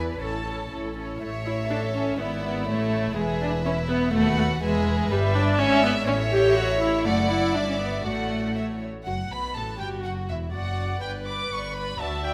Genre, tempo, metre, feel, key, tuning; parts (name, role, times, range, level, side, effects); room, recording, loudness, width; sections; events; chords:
quick classical-period movement for string orchestra; 123 BPM; 2/4; straight; A major; A4 = 441 Hz
warm chamber violin section; second line; 0.0-12.3 s; E4 to F#5; -33 LUFS; equal
rich chamber viola section; accompaniment; 0.0-12.3 s; G3 to E5; -28 LUFS; equal
clear chamber double bass section; bass; 0.0-12.3 s; E1 to E2; -34 LUFS; equal
warm studio cello section; bass; 0.0-12.3 s; D2 to B4; -34 LUFS; equal
warm chamber violin section; melody; 0.2-12.3 s; E4 to D6; -34 LUFS; equal
moderate scoring stage reverb, RT60 1.8 s; -25 LUFS; mono
0.0-1.2 A section; 1.2-9.1 B section; 9.1-12.3 A section
0.2 A; 2.2 E7/G#; 2.7 A; 3.2 E; 4.1 B7/D#; 4.6 E; 5.1 Em7/G; 5.6 E7/G#; 6.1 A; 7.1 D/F#; 7.5 Em7/G; 8.1 D/A; 9.1 Gmaj9/F#; 10.1 Dadd9/E; 11.0 G